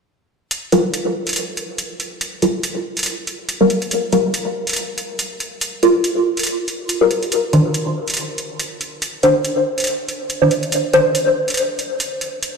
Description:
deep dubstep; 141 BPM; 4/4; swing 56% on 16ths, half-time; G minor; A4 = 441 Hz
electronic hi-hat; drums; 0.5-12.5 s; -23 LUFS; right 1 dB; overdrive
filtered dub chord stab; stabs; 0.7-11.0 s; Eb3 to C5; -17 LUFS; equal; phaser, lush chorus, dub echo
wet huge ambient reverb, RT60 4.7 s; played on a big sound system in a bare room, stone room reverb; -16 LUFS; side -5 dB against mid
0.5-12.6 A section
filter sweep on synth stab 0.5-12.6
0.5 Gm7; 7.3 Cmadd9
| 0.51 0.94 1.36 1.79 | 2.21 2.64 3.06 3.49 | 3.91 4.34 4.76 5.19 | 5.62 6.04 6.47 6.89 | 7.32 7.74 8.17 8.60 | 9.02 9.45 9.87 10.30 | 10.72 11.15 11.57 12.00 | 12.43

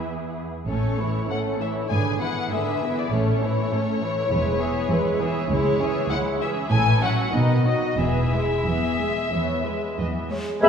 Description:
quick classical-period movement for symphony orchestra; 89-102 BPM; 4/4; rubato; E major from 5.5 s; A4 = 439 Hz
muted chamber violin section; melody; 0.0-10.7 s; B4 to G#5; -28 LUFS; left 4 dB
muted chamber violin section; second line; 0.0-10.7 s; C#4 to E5; -30 LUFS; left 2 dB
muted studio viola section; accompaniment; 0.0-10.7 s; D3 to B4; -26 LUFS; right 1 dB
muted chamber cello section; bass; 0.0-10.7 s; C#2 to B3; -29 LUFS; right 2 dB
muted chamber double bass section; bass; 0.7-10.7 s; E1 to E2; -26 LUFS; right 1 dB
bright silver concert flute; second line; 10.6-10.7 s; B5; -28 LUFS; left 5 dB
clear clarinet; second line; 10.6-10.7 s; E5; -24 LUFS; left 3 dB
clear oboe; second line; 10.6-10.7 s; G#5; -26 LUFS; right 2 dB
warm bassoon; accompaniment; 10.6-10.7 s; G#3; -22 LUFS; right 2 dB
dark French horn section; sustained chords; 10.6-10.7 s; G#4 to B4; -16 LUFS; left 2 dB
clear trumpet section; stabs; 10.6-10.7 s; E5; -15 LUFS; left 3 dB
wet concert hall reverb, RT60 1.9 s; heard from further back in the room; -21 LUFS; side -7 dB against mid
0.0-10.6 A section
0.0 E; 0.7 A; 1.9 E7/G#; 3.1 A; 4.3 E; 5.5 C#m; 6.7 F#m7/A; 7.3 B; 8.0 E
0.04 | 0.68 1.29 1.91 2.52 | 3.12 3.71 4.31 4.91 | 5.50 6.10 6.71 7.33 | 7.98 8.65 9.32 9.98 | 10.62

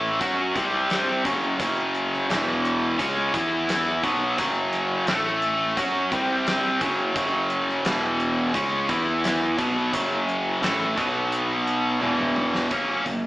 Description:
classic rock; 86 BPM; 4/4; straight; A4 = 438 Hz
tight distorted guitar; riff; 0.0-13.3 s; E2 to F#4; -22 LUFS; equal; distortion
fuzz fingered electric bass; bass; 0.0-13.3 s; E1 to F#2; -32 LUFS; equal; overdrive
gated 80s drum kit; drums; 0.2-13.2 s; hi-hat, kick drum, snare drum, toms; -30 LUFS; equal
moderate large studio reverb, RT60 1.2 s; band playing live in one room, small speaker sound; -21 LUFS; side -18 dB against mid
0.0-12.7 A section
drum fill 12.0-12.7
0.2 F#5; 0.6 C5; 1.2 F#5; 2.3 E5; 3.0 C#5; 3.3 E5; 4.0 F#5; 5.1 A5; 5.8 F#5; 6.1 C5; 6.8 F#5; 7.8 E5; 8.5 C#5; 8.9 E5; 9.6 F#5; 11.0 B5; 12.0 E5; 12.7 F#
0.21 0.90 | 1.60 2.29 2.99 3.68 | 4.38 5.07 5.76 6.46 | 7.15 7.85 8.54 9.24 | 9.93 10.63 11.32 12.02 | 12.71

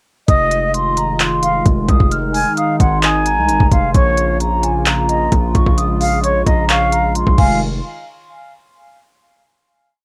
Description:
hip hop, trap; 131 BPM; 4/4; half-time; F minor; A4 = 440 Hz
vibraphone with medium mallets; melody; 0.3-7.6 s; Ab5 to F6; -23 LUFS; equal; cassette tape
concert flute; second line; 0.3-7.6 s; Db5 to Ab5; -22 LUFS; equal; cassette tape, analog delay
hollow soft pad; sustained chords; 0.3-7.6 s; Db3 to F4; -24 LUFS; equal; chorus, cassette tape
distorted 808-style bass; bass; 0.3-7.8 s; F1 to C2; -22 LUFS; equal; distortion
trap drum kit; drums; 0.3-7.5 s; crash cymbal, handclaps, hi-hat, kick drum; -18 LUFS; equal; cassette tape
little or no reverb; home recording on cassette; -15 LUFS; mono
0.3-7.6 hook; 7.6-9.4 final hit
0.3 Fm7; 3.9 Bbm; 7.4 Fm7; 7.6 N.C.
| 0.28 0.74 1.20 1.66 | 2.11 2.57 3.03 3.49 | 3.95 4.40 4.86 5.32 | 5.78 6.24 6.69 7.15 | 7.61

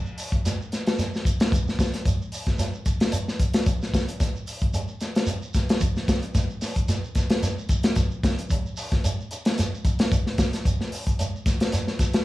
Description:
afrobeat; 112 BPM; 4/4; swing 55% on 16ths
shekere; percussion; 0.1-12.2 s; -29 LUFS; right 1 dB
crunchy breakbeat drum kit; drums; 0.2-12.2 s; hi-hat, kick drum, snare drum; -23 LUFS; equal
light reverb; small room ambience, faint mains hum; -22 LUFS; side -17 dB against mid
0.0-12.2 A section
0.45 0.98 | 1.52 2.06 2.60 3.13 | 3.67 4.21 4.74 5.28 | 5.82 6.35 6.89 7.43 | 7.96 8.50 9.04 9.58 | 10.11 10.65 11.19 11.73

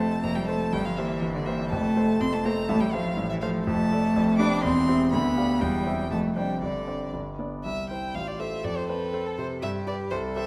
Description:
quick classical-period movement for piano trio; 122 BPM; 2/4; rubato; F major, C major from 3.7 s; A4 = 438 Hz
rich violin; melody; 0.0-10.5 s; A4 to D6; -35 LUFS; equal
rich cello; second line; 0.0-10.5 s; D3 to A4; -29 LUFS; equal
clear concert grand piano; accompaniment; 0.0-10.5 s; E1 to F5; -30 LUFS; equal
wet recital hall reverb, RT60 1.6 s; -26 LUFS; mono
0.0-7.7 A section; 7.7-10.5 B section
0.0 F; 0.7 C5/G; 1.7 F; 2.7 F/A; 3.7 Dm/F; 4.2 G7/F; 4.6 C/E; 5.1 G7/D; 5.6 C/E; 6.1 Dm7/F; 6.6 Gsus4; 7.1 G; 7.7 C; 8.2 F/A; 8.7 F; 9.6 G
0.23 | 0.73 1.22 | 1.71 2.20 | 2.69 3.18 | 3.67 4.15 | 4.64 5.12 | 5.61 6.11 | 6.62 7.14 | 7.66 8.15 | 8.65 9.14 | 9.62 10.11

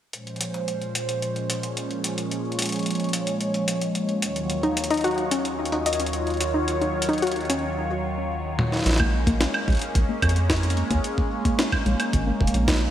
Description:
IDM; 110 BPM; 4/4; straight; Bb minor; A4 = 440 Hz
phased analog pad; sustained chords; 0.1-12.9 s; Eb2 to Db5; -26 LUFS; equal; phaser, chorus
jungle sampler-style drum kit; drums; 0.1-12.8 s; hi-hat, snare drum, toms, woodblock; -28 LUFS; equal; studio reverb
warbly dusty pluck; arpeggios; 4.6-12.5 s; Ab3 to Eb5; -27 LUFS; left 2 dB; chorus, digital delay
rubbery square bass; bass; 8.9-12.9 s; F1 to F2; -23 LUFS; equal; tube saturation
electronic kick drum; drums; 9.0-12.8 s; -26 LUFS; equal; studio reverb
moderate lush hall reverb, RT60 2.7 s; bright 1980s-style digital production; -22 LUFS; side -11 dB against mid
0.1-8.9 A section; 8.9-12.9 B section
filter sweep on analog synth pad 0.1-8.9; drum fill 8.5-8.9
0.1 Bbm7; 4.2 Ebm7; 8.9 Bbm7
| 0.13 0.68 1.22 1.77 | 2.31 2.86 3.41 3.95 | 4.50 5.04 5.59 6.13 | 6.68 7.22 7.77 8.31 | 8.86 9.41 9.95 10.50 | 11.04 11.59 12.13 12.68

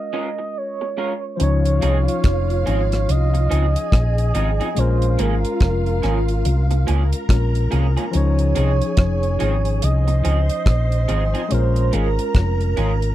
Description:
lovers rock reggae; 71 BPM; 4/4; swing 61% on 16ths; Db major; A4 = 440 Hz
reedy FM lead; melody; 0.0-13.1 s; Bb4 to Eb5; -25 LUFS; right 4 dB; chorus, tremolo, tape echo
barky tine electric piano; accompaniment; 0.0-13.1 s; F3 to Db5; -27 LUFS; left 6 dB; overdrive, slapback echo
electric guitar through a small old amp; stabs; 0.1-12.9 s; F3 to Bb4; -26 LUFS; right 2 dB; analog chorus
soft string machine; second line; 1.4-13.1 s; F4 to C6; -30 LUFS; equal; ensemble chorus
hollow-body short-scale fingered electric bass; bass; 1.4-13.1 s; F1 to Db2; -18 LUFS; equal
deep reggae drum kit; drums; 1.4-13.1 s; hi-hat, kick drum, rim click; -20 LUFS; equal
little or no reverb; dry, close 1970s-style studio recording; -17 LUFS; side -13 dB against mid
0.0-1.4 A section; 1.4-13.1 B section
break 0.0-1.4
0.0 Bbm7; 1.4 Dbmaj9; 4.8 Bbm7; 8.1 Dbmaj9; 11.5 Bbm7
0.55 | 1.40 2.24 3.08 3.92 | 4.77 5.61 6.45 7.29 | 8.13 8.97 9.82 10.66 | 11.50 12.34

